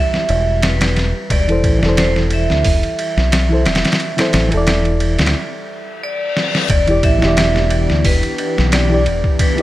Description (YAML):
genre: trip hop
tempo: 89 BPM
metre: 4/4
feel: swing 54% on 16ths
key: E minor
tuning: A4 = 438 Hz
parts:
  - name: vibraphone with medium hard mallets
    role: melody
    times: 0.0-9.6 s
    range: B4 to E5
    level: -21 LUFS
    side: right 1 dB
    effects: tape echo
  - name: reed electric piano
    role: accompaniment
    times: 0.0-9.6 s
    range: E3 to E5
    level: -21 LUFS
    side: equal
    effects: harmonic tremolo, tape echo
  - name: bowed-like drone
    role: texture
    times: 0.0-5.3 s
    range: G3 to G4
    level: -35 LUFS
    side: right 4 dB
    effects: none
  - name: trip hop sampler-style drum kit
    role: drums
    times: 0.1-9.6 s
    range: hi-hat, kick drum, ride cymbal, snare drum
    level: -17 LUFS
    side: equal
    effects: none
  - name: deep dub fingered electric bass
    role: bass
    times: 0.3-9.2 s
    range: E1 to D2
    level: -17 LUFS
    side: equal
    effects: none
  - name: reverse cymbal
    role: sound effects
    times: 5.8-6.7 s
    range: none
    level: -25 LUFS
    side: left 5 dB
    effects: none
  - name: warbly tape-like pad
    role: sustained chords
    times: 7.2-9.6 s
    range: E3 to G4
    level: -23 LUFS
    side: right 1 dB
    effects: chorus, built-in reverb
room: little or no reverb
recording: none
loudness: -13 LUFS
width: side -16 dB against mid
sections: 0.0-6.7 A section; 6.7-9.6 B section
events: break 5.3-6.7; reverse cymbal 5.8-6.7; drum fill 6.4-6.7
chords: 0.0 Em; 1.3 Am/E; 6.7 Em7